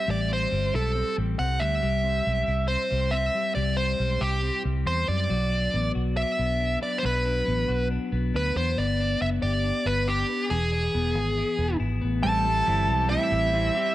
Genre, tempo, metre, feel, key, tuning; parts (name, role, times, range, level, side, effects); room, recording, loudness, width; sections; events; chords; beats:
indie pop; 138 BPM; 4/4; straight; A dorian; A4 = 440 Hz
dark smooth lead guitar; melody; 0.0-13.9 s; G4 to A5; -26 LUFS; right 1 dB; overdrive
twelve-string electric guitar; arpeggios; 0.0-13.9 s; E3 to G#4; -31 LUFS; left 5 dB; slapback echo
vintage muted fingered electric bass; bass; 0.1-13.7 s; E1 to F#2; -27 LUFS; equal
bright trumpet; second line; 12.2-13.9 s; E4 to A4; -35 LUFS; left 5 dB
clean electric guitar; accompaniment; 12.2-13.9 s; A2 to E4; -29 LUFS; right 4 dB
light reverb, digital ambience; -23 LUFS; side -15 dB against mid
0.0-12.2 A section; 12.2-13.9 B section
0.0 Am7; 1.8 C; 5.3 Bm; 8.8 G; 10.5 E; 12.2 Am7
| 0.09 0.52 0.95 1.39 | 1.82 2.26 2.69 3.13 | 3.56 4.00 4.43 4.87 | 5.30 5.73 6.17 6.60 | 7.04 7.47 7.91 8.34 | 8.77 9.21 9.64 10.07 | 10.51 10.94 11.38 11.81 | 12.24 12.67 13.10 13.54